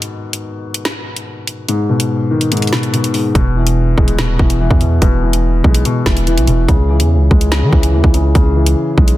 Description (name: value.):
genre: hip hop, drill.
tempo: 144 BPM.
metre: 4/4.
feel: half-time.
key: G# minor.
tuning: A4 = 440 Hz.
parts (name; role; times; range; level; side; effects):
dark concert grand piano; accompaniment; 0.0-9.2 s; G#2 to G#3; -16 LUFS; left 2 dB; low-pass filter.
drill drum kit; drums; 0.0-9.2 s; hi-hat, kick drum, snare drum; -14 LUFS; equal; none.
long sustained 808-style bass; bass; 3.4-9.2 s; D#1 to E3; -14 LUFS; equal; none.
room: digital ambience.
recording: dense, heavily limited modern master.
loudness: -11 LUFS.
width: side -16 dB against mid.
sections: 0.0-9.2 A section.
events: break 0.0-3.4.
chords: 0.0 G#m; 3.4 E; 6.7 C#m.